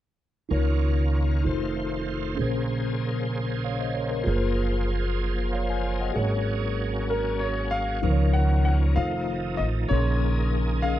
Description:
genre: gospel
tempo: 64 BPM (dotted quarters)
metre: 6/8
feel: straight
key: Db major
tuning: A4 = 445 Hz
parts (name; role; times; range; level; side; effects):
- mellow tine electric piano; accompaniment; 0.5-11.0 s; Ab2 to C6; -29 LUFS; left 1 dB; medium stereo tremolo
- bright tonewheel organ; sustained chords; 0.5-11.0 s; Db3 to C5; -31 LUFS; right 2 dB; slow rotary speaker, overdrive, chorus vibrato
- upright bass; bass; 0.5-11.0 s; F1 to Db2; -25 LUFS; equal; none
- clear grand piano; melody; 7.1-11.0 s; Bb4 to Gb5; -29 LUFS; left 1 dB; none
room: little or no reverb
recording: dry, close 1970s-style studio recording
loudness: -23 LUFS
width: side -13 dB against mid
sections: 0.5-8.0 A section; 8.0-11.0 B section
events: none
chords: 0.5 Db69; 1.5 F7; 2.4 Bbm9; 4.3 Gbmaj9#11; 6.2 Ab9sus4; 8.0 Db69; 9.0 F7; 9.9 Bbm9

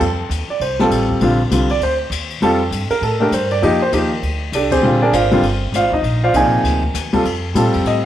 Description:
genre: jazz piano trio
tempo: 199 BPM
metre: 4/4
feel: swing 61% on 8ths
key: F mixolydian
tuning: A4 = 440 Hz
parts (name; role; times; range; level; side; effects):
- upright bass; bass; 0.0-8.1 s; G1 to Bb2; -21 LUFS; equal; none
- jazz brush drum kit; drums; 0.0-7.9 s; crash cymbal, hi-hat, kick drum, ride cymbal, snare drum; -26 LUFS; left 6 dB; none
- warm baby grand piano; melody; 0.5-8.0 s; C3 to Ab5; -15 LUFS; equal; none
room: moderate spring reverb, RT60 1.6 s, studio reverb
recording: 1960s-style stereo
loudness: -14 LUFS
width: side -11 dB against mid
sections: 0.0-8.1 A section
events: band accent 4.7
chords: 0.0 F9; 1.2 Bb69; 2.4 F13; 4.8 Bb13; 7.2 F9

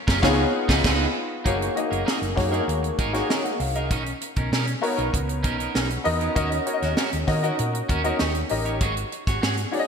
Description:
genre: polished 1980s jazz-funk pop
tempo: 98 BPM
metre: 4/4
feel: straight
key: unclear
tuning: A4 = 440 Hz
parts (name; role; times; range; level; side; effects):
- electric guitar at the edge of break-up; riff; 0.1-9.8 s; Db4 to Db5; -28 LUFS; right 3 dB; wide subtle chorus
- hollow-body short-scale fingered electric bass; bass; 0.1-9.6 s; Gb1 to Eb3; -27 LUFS; equal; none
- tight funk drum kit; drums; 0.1-9.9 s; crash cymbal, hi-hat, kick drum, snare drum; -26 LUFS; right 1 dB; gated reverb
- warm grand piano; accompaniment; 0.2-9.9 s; A3 to Gb5; -25 LUFS; left 2 dB; analog chorus
room: moderate lush hall reverb, RT60 1.8 s, studio ambience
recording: bright 1980s-style digital production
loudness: -21 LUFS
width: side -6 dB against mid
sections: 0.0-1.5 A section; 1.5-9.9 B section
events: band accent 0.0-1.5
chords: 0.2 Db9; 1.5 Gb69; 3.9 Bmaj9; 6.4 Ebm7; 8.2 Eb7; 8.8 Ab7sus4

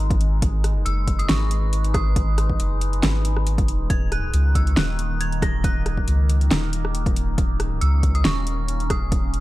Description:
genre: deep dubstep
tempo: 138 BPM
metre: 4/4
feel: swing 54% on 16ths, half-time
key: G# minor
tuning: A4 = 441 Hz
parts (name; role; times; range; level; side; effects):
- overtone-sweeping drone; sustained chords; 0.0-9.4 s; D#3 to B4; -31 LUFS; equal; chorus, built-in reverb, phaser
- soft dub sub bass; bass; 0.0-9.4 s; D#1 to C#2; -21 LUFS; equal; none
- deep house drum kit; drums; 0.1-9.4 s; hi-hat, rim click, snare drum; -25 LUFS; equal; overdrive, small room ambience
- electronic kick drum; drums; 0.1-9.2 s; none; -23 LUFS; equal; overdrive, small room ambience
- dark detuned synth bell; melody; 0.9-9.4 s; C#6 to A#6; -32 LUFS; right 1 dB; chorus, dub echo
room: little or no reverb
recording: dark, warm production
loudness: -19 LUFS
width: side -17 dB against mid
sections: 0.0-9.4 A section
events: none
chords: 0.0 G#m; 3.9 D#m7

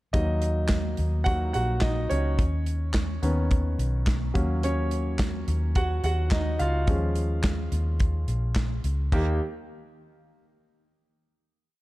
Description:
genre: piano-driven pop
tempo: 107 BPM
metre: 4/4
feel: straight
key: Eb minor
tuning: A4 = 441 Hz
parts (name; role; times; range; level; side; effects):
- bright concert grand piano; accompaniment; 0.1-9.4 s; Eb2 to Gb5; -30 LUFS; equal; none
- vintage muted fingered electric bass; bass; 0.1-9.4 s; Bb1 to Eb2; -26 LUFS; equal; none
- modern studio drum kit; drums; 0.1-9.3 s; crash cymbal, handclaps, hi-hat, kick drum, snare drum; -27 LUFS; equal; none
room: light reverb, small room ambience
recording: dark, warm production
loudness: -23 LUFS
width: side -18 dB against mid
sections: 0.1-9.1 verse; 9.1-11.4 final chord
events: grand piano solo 0.1-9.1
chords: 0.1 Ebm; 2.4 Badd9/D#; 4.4 Gb/Eb; 6.9 Db/Eb; 9.1 Eb

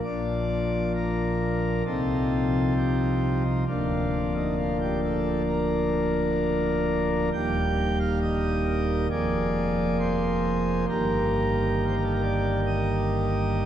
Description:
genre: classical, chorale-style piece for pipe organ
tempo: 66 BPM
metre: 4/4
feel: rubato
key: Bb major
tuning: A4 = 440 Hz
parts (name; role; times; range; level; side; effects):
- pipe organ, principal chorus; solo; 0.0-13.7 s; D1 to G5; -23 LUFS; equal; none
room: wet cathedral reverb, RT60 4.2 s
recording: none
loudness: -23 LUFS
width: side -10 dB against mid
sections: 0.0-13.7 A section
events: none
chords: 0.0 Bb; 1.9 F7/C; 3.7 Bb/D; 7.3 Eb; 9.1 Bb7/F; 10.9 Eb/G

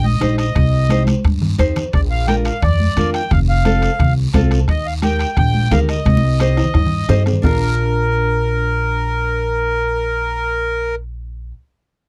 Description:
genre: latin, cumbia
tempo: 174 BPM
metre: 4/4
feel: straight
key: Bb major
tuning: A4 = 440 Hz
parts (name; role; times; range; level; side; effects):
- accordion; melody; 0.0-11.0 s; Bb4 to G5; -23 LUFS; equal; none
- upright bass; bass; 0.0-11.5 s; F1 to G2; -20 LUFS; equal; none
- congas; percussion; 0.0-7.5 s; none; -25 LUFS; equal; none
- nylon-string guitar; accompaniment; 0.2-11.5 s; C4 to C5; -25 LUFS; equal; none
- bombo; percussion; 0.2-7.5 s; none; -22 LUFS; equal; none
- guiro; percussion; 0.2-7.5 s; none; -38 LUFS; equal; none
- timbales; percussion; 0.2-7.5 s; none; -29 LUFS; equal; none
room: little or no reverb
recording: none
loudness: -17 LUFS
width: mono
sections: 0.0-7.4 A section; 7.4-10.2 B section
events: drum fill 1.1-1.9, 6.1-7.4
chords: 0.0 Eb; 0.6 Cm; 1.9 Bb; 3.3 F; 4.7 Eb; 6.1 Cm; 7.4 Bb

